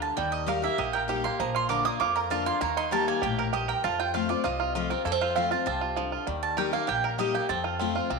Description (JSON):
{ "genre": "bluegrass", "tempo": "197 BPM", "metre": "4/4", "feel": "straight", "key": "unclear", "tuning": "A4 = 440 Hz", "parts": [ { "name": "picked steel-string acoustic guitar", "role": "accompaniment", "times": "0.0-8.2 s", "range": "F2 to G4", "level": "-31 LUFS", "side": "left 11 dB", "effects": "none" }, { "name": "mandolin", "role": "stabs", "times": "0.0-7.9 s", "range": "A4 to Eb6", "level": "-30 LUFS", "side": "right 6 dB", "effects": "none" }, { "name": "upright bass", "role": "bass", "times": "0.0-8.2 s", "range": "Bb1 to F2", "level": "-36 LUFS", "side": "left 2 dB", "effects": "none" }, { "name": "bluegrass banjo", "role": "arpeggios", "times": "0.2-8.2 s", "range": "F3 to Bb4", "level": "-30 LUFS", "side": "right 5 dB", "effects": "none" } ], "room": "wet echo chamber reverb, RT60 1.2 s, small room ambience", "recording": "1960s-style stereo with parts hard left and right", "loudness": "-25 LUFS", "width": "side -3 dB against mid", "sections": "0.2-8.2 A section", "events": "mandolin solo 0.0-8.2", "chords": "0.2 Eb; 1.4 Bb; 2.6 Eb; 3.8 F; 6.3 Eb; 7.5 F" }